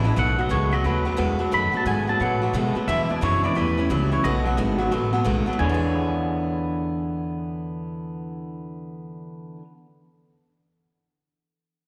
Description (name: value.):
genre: rockabilly.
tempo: 177 BPM.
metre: 4/4.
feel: swing 64% on 8ths.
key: E mixolydian.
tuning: A4 = 440 Hz.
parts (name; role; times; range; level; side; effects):
picked steel-string acoustic guitar; accompaniment; 0.0-9.8 s; E2 to G#4; -30 LUFS; equal; slapback echo.
electric guitar through a small old amp; riff; 0.0-9.6 s; E2 to C#5; -29 LUFS; equal; slapback echo.
upright bass; bass; 0.0-9.6 s; G#1 to B2; -28 LUFS; equal; none.
twangy electric guitar; melody; 0.2-9.6 s; B4 to B5; -29 LUFS; equal; slapback echo, analog delay.
room: light reverb, studio ambience.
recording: live gig heard through the venue's PA, recital hall reverb.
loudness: -23 LUFS.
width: mono.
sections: 0.0-5.6 A section; 5.6-8.3 B section.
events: none.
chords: 0.2 B7; 2.9 E7; 3.6 A7; 4.2 B7; 5.6 E6.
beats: | 0.17 0.51 0.85 1.19 | 1.52 1.86 2.20 2.54 | 2.88 3.22 3.56 3.90 | 4.24 4.58 4.92 5.26 | 5.60 5.94 6.28 6.62 | 6.96 7.30 7.64 7.98.